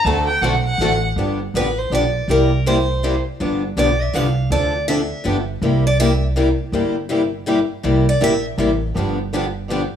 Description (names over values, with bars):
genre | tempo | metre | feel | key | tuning
acoustic string swing (jazz manouche) | 162 BPM | 3/4 | swing 63% on 8ths | unclear | A4 = 437 Hz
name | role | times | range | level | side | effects
warm violin | second line | 0.0-1.1 s | F#5 to A5 | -20 LUFS | equal | none
upright bass | bass | 0.0-9.8 s | G1 to D2 | -21 LUFS | right 1 dB | none
picked steel-string acoustic guitar | accompaniment | 0.1-9.8 s | C3 to A4 | -22 LUFS | left 6 dB | none
picked swing-style acoustic guitar | accompaniment | 0.1-9.8 s | C3 to A4 | -24 LUFS | right 3 dB | none
picked steel-string acoustic guitar | melody | 1.6-8.5 s | Bb4 to F5 | -22 LUFS | right 1 dB | none
room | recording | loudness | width
light reverb | rough home demo mix, studio reverb | -16 LUFS | side -9 dB against mid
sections
0.0-1.2 A section; 1.2-10.0 A section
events
violin solo 0.0-1.2; steel-string acoustic guitar solo 1.2-10.0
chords
0.1 D7; 1.2 G7; 2.3 C7; 3.4 G7; 4.5 Dm7; 5.3 G7; 5.6 C7; 9.0 G7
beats
| 0.06 0.43 0.80 | 1.17 1.54 1.91 | 2.28 2.65 3.03 | 3.40 3.77 4.14 | 4.51 4.88 5.25 | 5.62 5.99 6.36 | 6.73 7.10 7.47 | 7.84 8.21 8.59 | 8.96 9.33 9.70